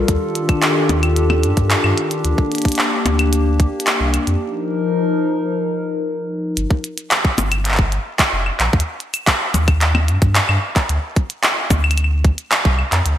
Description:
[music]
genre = IDM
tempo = 111 BPM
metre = 4/4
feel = straight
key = unclear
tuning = A4 = 440 Hz
[part]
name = hollow soft pad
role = sustained chords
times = 0.0-6.5 s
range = Eb3 to Bb4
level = -19 LUFS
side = left 2 dB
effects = chorus
[part]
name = warm sub bass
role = bass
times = 0.0-13.1 s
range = F1 to G2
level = -18 LUFS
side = equal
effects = tube saturation
[part]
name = electronic kick drum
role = drums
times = 0.1-12.8 s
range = none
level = -16 LUFS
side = equal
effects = none
[part]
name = glitchy drum kit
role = drums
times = 0.1-13.2 s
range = cabasa, claves, handclaps, hi-hat, percussion blips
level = -18 LUFS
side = equal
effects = gated reverb
[sound]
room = moderate lush hall reverb, RT60 1.7 s, digital ambience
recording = bright 1980s-style digital production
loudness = -15 LUFS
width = side -11 dB against mid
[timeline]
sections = 0.0-6.6 A section; 6.6-13.2 B section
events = break 4.4-6.6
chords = 0.1 Ebmaj9#11; 2.2 Bb6/D; 4.4 F7sus4; 6.6 N.C.; 8.7 Eb; 10.9 N.C.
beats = | 0.08 0.62 1.17 1.71 | 2.25 2.79 3.33 3.87 | 4.41 4.95 5.49 6.03 | 6.57 7.11 7.65 8.19 | 8.73 9.27 9.81 10.35 | 10.89 11.44 11.97 12.52 | 13.06

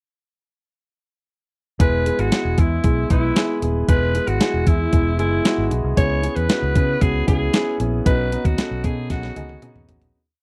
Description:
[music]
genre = 1980s-style pop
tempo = 115 BPM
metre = 4/4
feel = straight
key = E major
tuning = A4 = 440 Hz
[part]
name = raspy alto saxophone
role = melody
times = 1.8-9.8 s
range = E4 to C#5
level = -26 LUFS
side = equal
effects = none
[part]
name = warm concert grand piano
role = accompaniment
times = 1.8-10.2 s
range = G#3 to B4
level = -26 LUFS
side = equal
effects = none
[part]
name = vintage muted fingered electric bass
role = bass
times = 1.8-10.1 s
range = D#1 to C#3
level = -25 LUFS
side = equal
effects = none
[part]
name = clean 12-bit digital drum machine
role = drums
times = 1.8-10.1 s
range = hi-hat, kick drum, snare drum, toms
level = -21 LUFS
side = equal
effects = none
[sound]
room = little or no reverb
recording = dry, close 1970s-style studio recording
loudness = -19 LUFS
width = mono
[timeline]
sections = 1.8-10.1 verse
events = fade-out 8.1-10.1; drum fill 9.1-10.1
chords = 1.8 E; 6.0 C#m7; 8.1 Badd9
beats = | 1.80 2.32 2.84 3.37 | 3.89 4.41 4.93 5.45 | 5.97 6.50 7.02 7.54 | 8.06 8.58 9.10 9.63

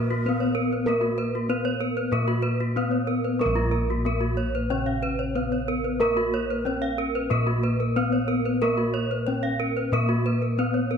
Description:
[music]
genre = Balinese gamelan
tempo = 92 BPM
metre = 4/4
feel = straight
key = Bb pelog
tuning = A4 = 440 Hz
[part]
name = gamelan-type bronze metallophone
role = melody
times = 0.0-11.0 s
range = Bb3 to Db4-30c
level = -28 LUFS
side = left 2 dB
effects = none
[part]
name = breathy mellow xiao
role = second line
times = 0.0-1.0 s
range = Bb4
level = -37 LUFS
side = right 5 dB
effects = none
[part]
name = gamelan-type bronze metallophone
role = accompaniment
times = 0.0-11.0 s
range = Db3-30c to Bb3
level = -35 LUFS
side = right 1 dB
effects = none
[part]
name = gamelan-type bronze metallophone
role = arpeggios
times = 0.0-11.0 s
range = F4-30c to F5-30c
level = -31 LUFS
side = right 5 dB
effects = none
[part]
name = gamelan-type bossed gongs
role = bass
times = 0.0-11.0 s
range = Bb1 to Bb4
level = -27 LUFS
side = equal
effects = none
[part]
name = gamelan-type bronze metallophone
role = arpeggios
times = 0.1-10.7 s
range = Gb4-20c to Db5-30c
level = -31 LUFS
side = left 6 dB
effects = none
[sound]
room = moderate recital hall reverb, RT60 1.4 s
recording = none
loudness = -22 LUFS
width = side -7 dB against mid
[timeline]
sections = 0.0-3.4 A section; 3.4-11.0 B section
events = none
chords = none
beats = 0.26 | 0.87 1.49 2.12 2.75 | 3.40 4.05 4.71 5.36 | 6.01 6.66 7.31 7.97 | 8.62 9.27 9.92 10.57

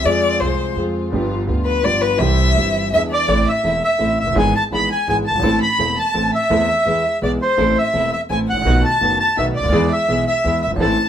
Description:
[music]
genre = tango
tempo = 167 BPM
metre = 3/4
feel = rubato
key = C major, A harmonic minor from 3.3 s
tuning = A4 = 440 Hz
[part]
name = warm violin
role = second line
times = 0.0-11.1 s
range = B4 to B5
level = -21 LUFS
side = left 3 dB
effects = none
[part]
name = clear concert grand piano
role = accompaniment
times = 0.0-11.0 s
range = E1 to A4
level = -20 LUFS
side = equal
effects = none
[part]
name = warm studio string section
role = stabs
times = 0.0-11.0 s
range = G3 to F4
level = -30 LUFS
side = right 2 dB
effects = none
[part]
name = upright bass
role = bass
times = 0.0-11.0 s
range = E1 to F2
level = -23 LUFS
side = right 1 dB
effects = none
[part]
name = bandoneon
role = melody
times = 2.9-11.1 s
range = C5 to B5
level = -18 LUFS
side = right 1 dB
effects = none
[sound]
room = moderate studio reverb, RT60 0.7 s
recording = band playing live in one room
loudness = -15 LUFS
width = side -9 dB against mid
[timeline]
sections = 0.0-3.3 A section; 3.3-11.1 B section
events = violin solo 0.0-3.3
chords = 0.0 Fm; 1.1 G7; 2.2 C; 2.9 E7; 3.3 Am; 4.4 E/G#; 5.4 Am/E; 6.9 E; 7.6 Am; 8.7 B7; 9.7 E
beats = | 0.05 0.41 0.76 | 1.12 1.48 1.84 | 2.20 2.56 2.92 | 3.28 3.64 4.00 | 4.36 4.72 5.07 | 5.43 5.79 6.14 | 6.50 6.86 7.22 | 7.58 7.94 8.30 | 8.66 9.02 9.37 | 9.73 10.09 10.45 | 10.80

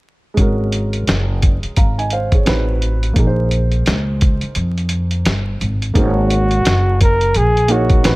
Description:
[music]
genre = hip hop, jazz-hop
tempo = 86 BPM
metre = 4/4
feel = swing 61% on 16ths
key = unclear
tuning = A4 = 440 Hz
[part]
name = dark upright piano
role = accompaniment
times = 0.3-8.2 s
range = Ab3 to Bb5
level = -22 LUFS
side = right 2 dB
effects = none
[part]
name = upright bass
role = bass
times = 0.4-8.2 s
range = Gb1 to F2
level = -17 LUFS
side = equal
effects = none
[part]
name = lo-fi sampler-style drum kit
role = drums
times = 0.4-8.2 s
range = hi-hat, kick drum, snare drum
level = -16 LUFS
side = equal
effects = none
[part]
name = breathy flugelhorn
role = melody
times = 6.0-8.2 s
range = Gb4 to Bb4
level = -17 LUFS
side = equal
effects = none
[sound]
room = small room ambience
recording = vinyl crackle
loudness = -14 LUFS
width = side -21 dB against mid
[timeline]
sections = 0.4-6.0 A section; 6.0-8.2 B section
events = break 4.6-6.0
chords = 0.4 Ab7sus4; 2.5 Adim7; 3.2 Bbm9; 5.6 N.C.; 6.0 Ab7sus4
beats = | 0.37 1.07 1.77 2.47 | 3.16 3.86 4.56 5.26 | 5.95 6.65 7.35 8.05

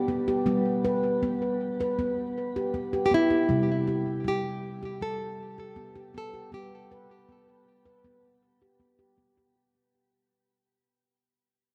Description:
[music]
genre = world meditative, meditative tuned percussion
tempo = 79 BPM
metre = 4/4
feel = straight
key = G major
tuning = A4 = 440 Hz
[part]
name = handpan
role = arpeggios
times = 0.0-9.6 s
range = C3 to B4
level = -30 LUFS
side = equal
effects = shimmer reverb, delay
[part]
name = nylon-string guitar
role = melody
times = 3.1-9.1 s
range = E4 to A4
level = -30 LUFS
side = equal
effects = shimmer reverb, delay
[sound]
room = wet concert hall reverb, RT60 2.4 s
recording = none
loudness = -27 LUFS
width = mono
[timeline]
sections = 0.0-9.5 A section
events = fade-out 0.0-9.5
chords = 0.0 G; 3.5 C; 6.5 G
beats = | 0.47 1.23 1.99 2.74 | 3.50 4.26 5.01 5.77 | 6.52 7.28 8.03 8.79

